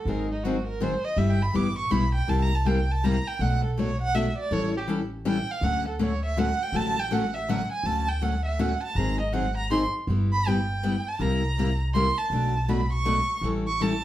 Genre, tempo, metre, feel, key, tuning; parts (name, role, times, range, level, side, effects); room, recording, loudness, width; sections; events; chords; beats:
acoustic string swing (jazz manouche); 162 BPM; 3/4; swing 63% on 8ths; D major; A4 = 440 Hz
warm violin; melody; 0.0-14.0 s; D#4 to D6; -29 LUFS; right 2 dB; plate reverb
picked steel-string acoustic guitar; accompaniment; 0.1-13.9 s; B2 to A4; -27 LUFS; left 2 dB
upright bass; bass; 0.1-14.0 s; G1 to D2; -28 LUFS; equal
wet studio reverb, RT60 0.5 s; heard from further back in the room; -23 LUFS; side -13 dB against mid
0.0-7.8 A section; 7.8-14.0 A section
violin solo 0.0-14.0
0.1 G#7; 1.2 G6; 2.3 C7; 3.4 Bm7; 4.5 A7; 5.6 Dmaj7; 9.0 G#7; 10.1 G6; 11.2 C7; 12.3 Bm9; 13.4 A7
| 0.08 0.45 0.82 | 1.19 1.56 1.93 | 2.29 2.66 3.03 | 3.40 3.77 4.14 | 4.51 4.88 5.25 | 5.62 5.99 6.36 | 6.73 7.11 7.48 | 7.85 8.22 8.59 | 8.96 9.33 9.70 | 10.08 10.45 10.82 | 11.19 11.56 11.94 | 12.31 12.68 13.05 | 13.42 13.80